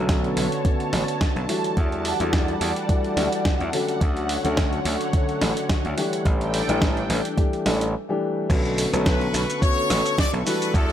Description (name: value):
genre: nu-disco, nu disco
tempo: 107 BPM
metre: 4/4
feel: swing 55% on 16ths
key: B minor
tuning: A4 = 440 Hz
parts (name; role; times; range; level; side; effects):
- dark grand piano; accompaniment; 0.0-10.9 s; D3 to A4; -26 LUFS; left 1 dB; sidechain pumping, ping-pong delay
- lush unison pad; sustained chords; 0.0-10.9 s; D3 to D6; -29 LUFS; equal; chorus, phaser, sidechain pumping
- gritty slap bass; bass; 0.0-10.9 s; A1 to E2; -25 LUFS; equal; overdrive
- dusty soul sampler-style drum kit; drums; 0.1-10.9 s; crash cymbal, hi-hat, rim click, shaker, snare drum; -28 LUFS; right 1 dB; none
- electronic kick drum; drums; 0.1-10.9 s; none; -22 LUFS; equal; none
- brilliant trumpet section; melody; 9.1-10.9 s; A4 to D5; -25 LUFS; left 3 dB; ping-pong delay
room: light reverb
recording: none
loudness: -20 LUFS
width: side -10 dB against mid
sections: 0.0-8.5 A section; 8.5-10.9 B section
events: break 7.9-8.5; drop 8.5-10.9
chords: 0.0 Bm9; 1.8 Em11; 4.0 Dmaj7; 6.3 A7sus4; 8.5 Bm9